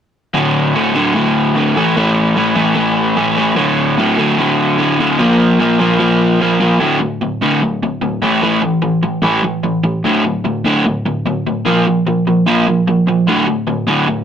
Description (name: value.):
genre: punk.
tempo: 149 BPM.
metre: 4/4.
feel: straight.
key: unclear.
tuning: A4 = 440 Hz.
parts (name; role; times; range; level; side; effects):
crunchy overdriven guitar; solo; 0.3-14.2 s; D2 to Bb3; -12 LUFS; equal; none.
room: moderate studio reverb, RT60 0.5 s.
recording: rough rehearsal-room recording, tube saturation.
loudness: -12 LUFS.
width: side -8 dB against mid.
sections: 0.4-6.8 A section; 6.8-14.2 B section.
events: none.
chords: 0.4 D5; 1.8 A5; 3.6 D5; 5.2 Bb5; 6.8 D5; 8.2 A5; 10.0 D5; 11.7 Bb5; 13.3 D5.